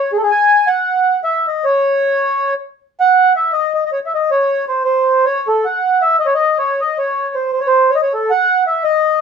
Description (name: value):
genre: balkan folk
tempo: 316 BPM (eighths)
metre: 7/8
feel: straight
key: unclear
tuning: A4 = 439 Hz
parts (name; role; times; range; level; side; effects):
- mellow accordion; solo; 0.0-9.2 s; G#4 to G#5; -12 LUFS; equal; none
room: moderate studio reverb, RT60 0.5 s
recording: band playing live in one room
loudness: -12 LUFS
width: side -6 dB against mid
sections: 0.0-3.0 A section; 3.0-9.2 A section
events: none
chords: none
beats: 0.11 | 0.30 0.49 0.69 0.88 1.07 1.26 1.45 | 1.64 1.83 2.02 2.21 2.40 2.59 2.78 | 2.98 3.17 3.35 3.55 3.74 3.93 4.12 | 4.31 4.50 4.69 4.88 5.07 5.26 5.45 | 5.64 5.83 6.02 6.21 6.40 6.58 6.78 | 6.96 7.15 7.34 7.53 7.72 7.91 8.10 | 8.29 8.48 8.67 8.86 9.05